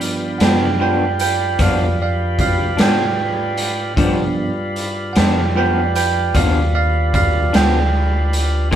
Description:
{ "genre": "slow blues", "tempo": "50 BPM (dotted quarters)", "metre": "12/8", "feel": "straight", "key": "unclear", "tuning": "A4 = 440 Hz", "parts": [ { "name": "bell-like tine electric piano", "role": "accompaniment", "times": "0.0-8.8 s", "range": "Eb3 to G5", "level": "-20 LUFS", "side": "right 7 dB", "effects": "none" }, { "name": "tonewheel organ", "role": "sustained chords", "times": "0.0-8.8 s", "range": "Eb3 to B4", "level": "-24 LUFS", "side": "left 1 dB", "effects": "slow rotary speaker" }, { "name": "deep dub fingered electric bass", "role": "bass", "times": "0.0-8.8 s", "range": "D2 to Ab2", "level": "-20 LUFS", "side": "equal", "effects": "none" }, { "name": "raw garage drum kit", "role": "drums", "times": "0.0-8.8 s", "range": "hi-hat, kick drum, snare drum", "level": "-20 LUFS", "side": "equal", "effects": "none" }, { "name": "electric guitar through a small old amp", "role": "accompaniment", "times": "0.4-8.8 s", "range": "G2 to D4", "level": "-20 LUFS", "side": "left 5 dB", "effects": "tremolo" } ], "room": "moderate studio reverb, RT60 0.5 s", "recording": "band playing live in one room", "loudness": "-14 LUFS", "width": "side -10 dB against mid", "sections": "0.0-8.8 A section", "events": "tine electric piano solo 0.0-8.8", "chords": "0.0 G7" }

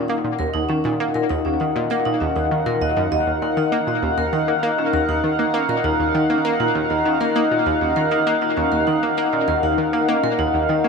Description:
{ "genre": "ambient, sequencer-driven space music", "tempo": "99 BPM", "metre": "4/4", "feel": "straight", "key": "Eb minor", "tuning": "A4 = 441 Hz", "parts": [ { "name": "sweeping resonant pad", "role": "sustained chords", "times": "0.0-10.9 s", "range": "Eb4 to Gb5", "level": "-20 LUFS", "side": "equal", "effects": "chorus" }, { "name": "vibraphone with medium hard mallets", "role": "arpeggios", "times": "0.0-10.9 s", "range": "Db4 to Eb5", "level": "-25 LUFS", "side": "moving between left 7 dB and right 5 dB", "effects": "auto-pan, ping-pong delay" }, { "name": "analog pluck", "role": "riff", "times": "0.0-10.9 s", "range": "Eb2 to Bb3", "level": "-23 LUFS", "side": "equal", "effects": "chorus, ping-pong delay" } ], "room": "wet plate reverb, RT60 2.7 s", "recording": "none", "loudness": "-17 LUFS", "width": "side -4 dB against mid", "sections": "0.0-10.9 A section", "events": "none", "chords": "0.0 Ebm" }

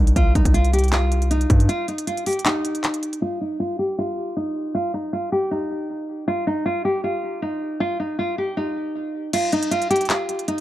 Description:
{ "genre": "hip hop, trap", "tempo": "157 BPM", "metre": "4/4", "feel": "half-time", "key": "C minor", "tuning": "A4 = 436 Hz", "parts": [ { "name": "nylon-string guitar", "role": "melody", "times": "0.0-10.6 s", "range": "Eb4 to G4", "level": "-22 LUFS", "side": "equal", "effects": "low-pass filter, tape echo" }, { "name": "hard-hitting 808-style bass", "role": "bass", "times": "0.0-1.7 s", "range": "C2 to G2", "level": "-18 LUFS", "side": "equal", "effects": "none" }, { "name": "trap drum kit", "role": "drums", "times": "0.1-3.2, 9.3-10.6 s", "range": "crash cymbal, handclaps, hi-hat, kick drum", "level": "-21 LUFS", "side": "equal", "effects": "none" } ], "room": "light reverb", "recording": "echo-heavy mix", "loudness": "-20 LUFS", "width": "side -14 dB against mid", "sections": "0.0-3.2 A section; 3.2-9.3 B section; 9.3-10.6 C section", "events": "break 1.7-3.2; filter sweep on nylon-string guitar 3.2-9.3; kick muted 9.3-10.6", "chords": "0.0 Cm; 3.2 N.C." }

